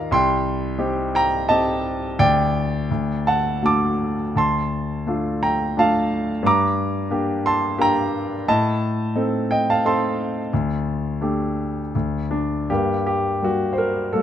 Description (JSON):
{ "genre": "classical, lyrical solo piano", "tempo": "79-90 BPM", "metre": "3/4", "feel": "rubato", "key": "unclear", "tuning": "A4 = 440 Hz", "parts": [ { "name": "warm grand piano", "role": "solo", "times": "0.0-14.2 s", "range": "C2 to D6", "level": "-19 LUFS", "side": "equal", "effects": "none" } ], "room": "light reverb", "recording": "close, detailed microphones", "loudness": "-19 LUFS", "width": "side -10 dB against mid", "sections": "0.0-12.7 A section; 12.7-14.2 B section", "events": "none", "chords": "0.1 Cm; 2.2 N.C.; 2.9 D; 4.4 Dm; 6.4 Gm; 8.5 Adim; 10.5 Dsus4; 11.9 N.C.; 12.7 Gmadd9" }